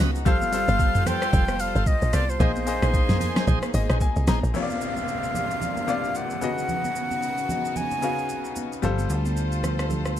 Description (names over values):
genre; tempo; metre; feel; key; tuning
amapiano; 112 BPM; 4/4; swing 58% on 16ths; C minor; A4 = 440 Hz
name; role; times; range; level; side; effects
bright grand piano; accompaniment; 0.0-10.2 s; C3 to Bb5; -31 LUFS; left 7 dB; none
rich studio string section; sustained chords; 0.0-10.2 s; C3 to C5; -33 LUFS; equal; sidechain pumping
bright tonewheel organ; stabs; 0.0-4.4 s; Eb4 to Eb5; -34 LUFS; right 2 dB; overdrive, slow rotary speaker, ping-pong delay
tight log drum bass; bass; 0.0-4.5 s; F1 to Db2; -24 LUFS; equal; none
smooth R&B drum kit; drums; 0.2-10.2 s; hi-hat, kick drum, rim click, shaker, snare drum, toms; -25 LUFS; equal; none
breathy concert flute; melody; 0.3-8.6 s; C5 to Ab5; -28 LUFS; equal; ping-pong delay
congas; percussion; 0.3-10.2 s; none; -34 LUFS; right 4 dB; none
downlifter and swell; sound effects; 4.5-10.2 s; none; -36 LUFS; right 1 dB; none
plucky analog bass; bass; 8.8-10.2 s; G1 to D2; -25 LUFS; equal; none
room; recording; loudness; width
little or no reverb; dark, warm production, faint mains hum; -22 LUFS; side -11 dB against mid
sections
0.0-4.5 A section; 4.5-10.2 B section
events
drop 0.0-4.5; grand piano fill 3.5-4.5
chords
0.3 G9sus4; 2.4 Bb9sus4; 4.5 C9sus4; 6.4 Db9sus4; 8.8 G9sus4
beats
| 0.26 0.80 1.33 1.87 | 2.40 2.94 3.47 4.01 | 4.54 5.08 5.62 6.15 | 6.69 7.22 7.76 8.29 | 8.83 9.37 9.90